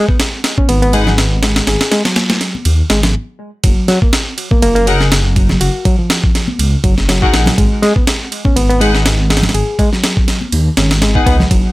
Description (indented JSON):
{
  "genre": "breakbeat, breaks",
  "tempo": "122 BPM",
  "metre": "4/4",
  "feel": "swing 55% on 16ths",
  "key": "G# dorian",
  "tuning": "A4 = 441 Hz",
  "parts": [
    { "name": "reed electric piano", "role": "riff", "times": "0.0-11.7 s", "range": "E#3 to G#4", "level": "-16 LUFS", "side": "equal", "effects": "tape echo" },
    { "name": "breakbeat sampler-style drum kit", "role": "drums", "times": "0.1-11.6 s", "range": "kick drum, ride cymbal, snare drum", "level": "-14 LUFS", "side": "equal", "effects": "none" },
    { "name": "congas", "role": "percussion", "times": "0.6-11.5 s", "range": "none", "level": "-20 LUFS", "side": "equal", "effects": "none" },
    { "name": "dark detuned saw bass", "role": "bass", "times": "0.7-11.6 s", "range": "F#1 to D#2", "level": "-14 LUFS", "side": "equal", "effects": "none" },
    { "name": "rich studio string section", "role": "stabs", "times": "0.9-1.0, 4.9-11.3 s", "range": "D#4 to F#5", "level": "-19 LUFS", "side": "left 4 dB", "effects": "tape echo" }
  ],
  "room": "little or no reverb",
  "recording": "none",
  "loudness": "-10 LUFS",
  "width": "side -19 dB against mid",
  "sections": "0.0-3.6 A section; 3.6-11.7 B section",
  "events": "stop 3.1-3.6; drop 3.6-11.7",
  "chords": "0.0 G#7(no3); 3.6 F#; 7.6 G#m7"
}